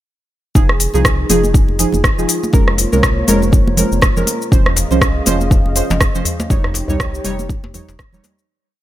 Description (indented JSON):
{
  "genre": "afro house",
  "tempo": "121 BPM",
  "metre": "4/4",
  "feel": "swing 57% on 16ths",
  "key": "F minor",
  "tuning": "A4 = 439 Hz",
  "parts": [
    { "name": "dark analog pad", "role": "sustained chords", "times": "0.6-8.5 s", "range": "Bb3 to F5", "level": "-24 LUFS", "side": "left 1 dB", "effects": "chorus, sidechain pumping" },
    { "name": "deep mellow chord stab", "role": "stabs", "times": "0.6-8.5 s", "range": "F3 to Db5", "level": "-19 LUFS", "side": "right 2 dB", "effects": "chorus, sidechain pumping, dub echo" },
    { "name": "round analog bass", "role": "bass", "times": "0.6-8.2 s", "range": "F1 to C2", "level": "-19 LUFS", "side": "equal", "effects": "sidechain pumping" },
    { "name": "afro-pop drum kit", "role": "drums", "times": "0.6-8.5 s", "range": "hi-hat, rim click, shaker", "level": "-18 LUFS", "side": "equal", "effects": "none" },
    { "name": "electronic kick drum", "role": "drums", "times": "0.6-8.1 s", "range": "none", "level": "-13 LUFS", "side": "equal", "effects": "none" },
    { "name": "congas", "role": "percussion", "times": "0.6-8.3 s", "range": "none", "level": "-23 LUFS", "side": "right 2 dB", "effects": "none" },
    { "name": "djembe", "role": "percussion", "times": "4.7-8.4 s", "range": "none", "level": "-26 LUFS", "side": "left 2 dB", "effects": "none" }
  ],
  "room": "little or no reverb",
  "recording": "none",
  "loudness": "-12 LUFS",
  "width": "side -14 dB against mid",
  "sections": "0.6-8.5 drop",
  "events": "drop 0.6-8.5; fade-out 5.8-8.5",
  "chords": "0.6 Fm7; 2.5 Bbm7/F; 4.5 Dbmaj7/F; 6.5 Eb7/F",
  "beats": "| 0.55 1.05 1.54 2.04 | 2.54 3.03 3.53 4.02 | 4.52 5.01 5.51 6.01 | 6.50 7.00 7.50 7.99"
}